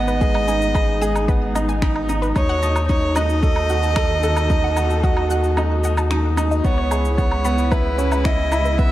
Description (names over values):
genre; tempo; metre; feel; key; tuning
piano and strings electronica; 112 BPM; 4/4; straight; unclear; A4 = 439 Hz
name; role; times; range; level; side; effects
dark violin; melody; 0.0-8.9 s; B4 to E5; -24 LUFS; right 2 dB; none
muted studio string section; sustained chords; 0.0-8.9 s; C#3 to A4; -27 LUFS; equal; sidechain pumping
bright upright piano; riff; 0.0-8.9 s; B3 to D#5; -24 LUFS; right 1 dB; none
warm sub bass; bass; 0.0-8.9 s; G#1 to D#2; -22 LUFS; equal; sidechain pumping
wide unison pluck; arpeggios; 0.1-8.8 s; B4 to F#6; -32 LUFS; left 3 dB; sidechain pumping, digital delay
electronic shaker, woodblock and finger snaps; drums; 0.1-8.9 s; none; -29 LUFS; equal; none
electronic kick drum; drums; 0.2-8.9 s; none; -19 LUFS; equal; none
room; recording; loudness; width
light reverb, studio ambience; none; -16 LUFS; side -14 dB against mid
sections
0.0-8.9 A section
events
kick drops out 5.6-6.6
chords
0.0 G#m; 2.4 D#dim; 6.6 C#m7